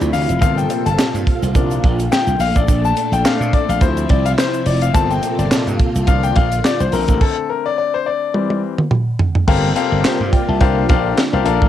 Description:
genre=early-eighties boogie funk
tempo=106 BPM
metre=4/4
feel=swing 56% on 16ths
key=unclear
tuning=A4 = 440 Hz
part: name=clear grand piano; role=accompaniment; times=0.0-11.7 s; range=D3 to A5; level=-19 LUFS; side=left 8 dB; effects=cassette tape
part: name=string machine, violins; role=sustained chords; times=0.0-11.7 s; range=Bb2 to A4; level=-22 LUFS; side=right 2 dB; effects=ensemble chorus, cassette tape
part: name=slap bass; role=bass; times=0.0-11.7 s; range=F1 to Bb2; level=-19 LUFS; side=right 1 dB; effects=transformer saturation
part: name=tight funk drum kit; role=drums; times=0.0-11.7 s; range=crash cymbal, handclaps, hi-hat, kick drum, snare drum, toms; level=-17 LUFS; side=right 1 dB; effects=cassette tape
part: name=egg shaker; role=percussion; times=0.0-7.2 s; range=none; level=-38 LUFS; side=right 16 dB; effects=none
room=light reverb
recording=home recording on cassette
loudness=-14 LUFS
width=side -11 dB against mid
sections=0.0-9.5 A section; 9.5-11.7 B section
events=grand piano solo 0.0-9.5; stop 7.2-9.5; drum fill 8.3-9.5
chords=0.4 Gm11; 1.6 C9sus4; 2.4 Bbmaj7; 3.8 Dm9; 4.9 Gm11; 6.1 C9sus4; 6.9 Bbmaj7; 8.3 Em7; 9.5 Gm11; 10.6 C9sus4

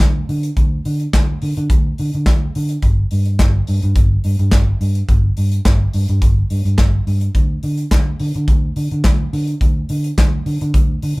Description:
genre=disco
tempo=106 BPM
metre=4/4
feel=straight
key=unclear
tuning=A4 = 442 Hz
part: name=vintage muted fingered electric bass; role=bass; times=0.0-11.2 s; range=G1 to D3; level=-17 LUFS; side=equal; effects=none
part: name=modern studio drum kit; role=drums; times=0.0-11.2 s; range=handclaps, hi-hat, kick drum, snare drum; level=-16 LUFS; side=equal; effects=none
room=light reverb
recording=band playing live in one room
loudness=-14 LUFS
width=side -24 dB against mid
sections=0.0-11.2 A section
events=none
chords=none

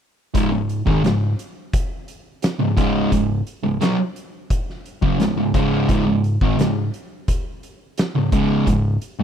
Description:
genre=stoner and doom metal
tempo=86 BPM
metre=4/4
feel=straight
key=unclear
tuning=A4 = 440 Hz
part: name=fuzz guitar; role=riff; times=0.3-9.2 s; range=C#2 to F#3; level=-18 LUFS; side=equal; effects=distortion
part: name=oversized low-tuned drum kit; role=drums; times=0.3-9.2 s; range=hi-hat, kick drum, snare drum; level=-23 LUFS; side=equal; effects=none
room=little or no reverb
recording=dry, close 1970s-style studio recording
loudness=-18 LUFS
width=side -8 dB against mid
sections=0.3-9.2 A section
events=none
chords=0.3 C#5

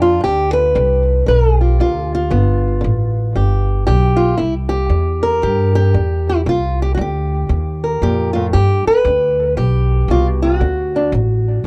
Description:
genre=acoustic country blues, solo or duo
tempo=116 BPM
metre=4/4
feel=swing 62% on 8ths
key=G mixolydian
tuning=A4 = 440 Hz
part: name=fingerpicked old ladder-braced acoustic guitar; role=melody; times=0.0-11.7 s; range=G2 to B4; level=-19 LUFS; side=equal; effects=none
part: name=upright bass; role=bass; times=0.0-11.7 s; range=G1 to G2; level=-18 LUFS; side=equal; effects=none
room=moderate booth ambience, RT60 0.2 s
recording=dark, warm production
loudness=-16 LUFS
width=mono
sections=0.0-11.7 A section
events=none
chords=0.0 G7; 4.4 C7; 6.5 Cm7; 8.5 G; 10.6 D

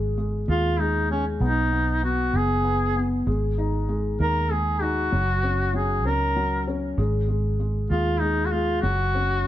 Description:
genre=six-eight pop ballad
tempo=65 BPM (dotted quarters)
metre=6/8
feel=straight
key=unclear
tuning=A4 = 441 Hz
part: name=felt-muted upright piano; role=accompaniment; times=0.0-9.5 s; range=F#3 to D#4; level=-28 LUFS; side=left 3 dB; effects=none
part: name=vintage muted fingered electric bass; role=bass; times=0.0-9.5 s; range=F#1 to D#2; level=-25 LUFS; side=right 1 dB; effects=none
part: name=warm duduk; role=melody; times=0.5-9.5 s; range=C#4 to A#4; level=-25 LUFS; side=equal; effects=none
room=light reverb, small room ambience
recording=none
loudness=-21 LUFS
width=side -13 dB against mid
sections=0.0-9.5 A section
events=none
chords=0.0 G#5; 1.4 B6; 3.3 G#5; 5.1 F#; 7.0 G#5; 8.8 F#5

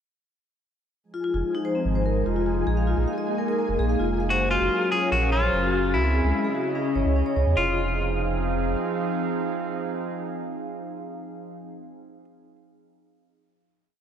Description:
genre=IDM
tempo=147 BPM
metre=4/4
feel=straight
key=F phrygian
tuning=A4 = 439 Hz
part: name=warbly tape-like pad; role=sustained chords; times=1.2-11.6 s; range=Db3 to F5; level=-28 LUFS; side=equal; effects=chorus, built-in reverb
part: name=flickering grainy texture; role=texture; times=1.2-7.6 s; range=Ab4 to Ab5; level=-36 LUFS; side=right 1 dB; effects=built-in reverb
part: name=vibraphone with medium mallets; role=arpeggios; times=1.1-7.8 s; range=Ab3 to F5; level=-27 LUFS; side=left 2 dB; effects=tape echo
part: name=warm sub bass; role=bass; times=1.3-8.8 s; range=F1 to Fb2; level=-25 LUFS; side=right 1 dB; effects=tube saturation
part: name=clean electric guitar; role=melody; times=4.3-12.2 s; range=Fb4 to Ab4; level=-26 LUFS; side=left 1 dB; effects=ping-pong delay
room=moderate lush hall reverb, RT60 2.5 s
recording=none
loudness=-22 LUFS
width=side -8 dB against mid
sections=1.0-7.6 groove; 7.6-10.8 final chord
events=none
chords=1.0 Fm7; 2.7 Bb7sus4; 4.3 Gbmaj7; 5.9 Dbmadd9; 7.6 Fm7

